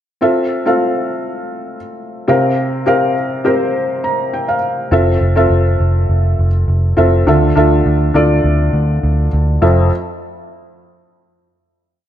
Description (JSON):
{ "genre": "piano-driven pop", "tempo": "102 BPM", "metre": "4/4", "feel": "straight", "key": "F major", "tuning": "A4 = 444 Hz", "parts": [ { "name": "felt-muted upright piano", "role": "accompaniment", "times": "0.2-9.9 s", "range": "F2 to Bb5", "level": "-14 LUFS", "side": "left 1 dB", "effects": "none" }, { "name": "vintage muted picked electric bass", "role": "bass", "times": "4.9-9.9 s", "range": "F1 to D2", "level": "-13 LUFS", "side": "equal", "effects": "none" } ], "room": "light reverb, small room ambience", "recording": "dark, warm production", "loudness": "-12 LUFS", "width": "side -10 dB against mid", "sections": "0.2-9.6 verse; 9.6-12.0 final chord", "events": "felt piano fill 3.7-4.9", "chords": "0.2 Fmaj7; 2.3 C7sus4; 4.9 Fmaj7; 7.3 Dmadd9; 9.6 Fmaj7" }